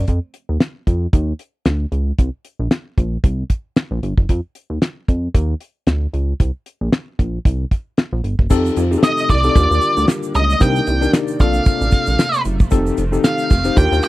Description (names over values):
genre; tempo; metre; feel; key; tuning
early-eighties boogie funk; 114 BPM; 4/4; swing 56% on 16ths; unclear; A4 = 440 Hz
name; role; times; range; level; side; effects
mellow tine electric piano; accompaniment; 0.0, 8.5-14.1 s; C4 to C5; -20 LUFS; left 4 dB; medium stereo tremolo
chorused pulse-width pad; sustained chords; 0.0-0.1, 8.5-14.1 s; C3 to D5; -28 LUFS; equal; none
chorused synth bass; bass; 0.0-14.0 s; F1 to F2; -18 LUFS; equal; none
damped 70s drum kit; drums; 0.1-14.1 s; crash cymbal, hi-hat, kick drum, snare drum; -14 LUFS; equal; none
egg shaker; percussion; 8.5-14.1 s; none; -38 LUFS; right 16 dB; none
octave-fuzz lead guitar; melody; 9.0-14.1 s; D5 to G5; -18 LUFS; right 1 dB; distortion
room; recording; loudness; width
little or no reverb; dry, close 1970s-style studio recording; -15 LUFS; side -17 dB against mid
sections
0.1-8.5 A section; 8.5-14.1 B section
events
none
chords
0.1 N.C.; 1.1 Dbsus2; 2.2 Bbsus2; 4.3 N.C.; 5.3 Dbsus2; 6.4 Bbsus2; 8.5 F7; 9.6 Ebmaj7; 10.6 Cm9; 11.4 Bbmaj9; 12.7 F7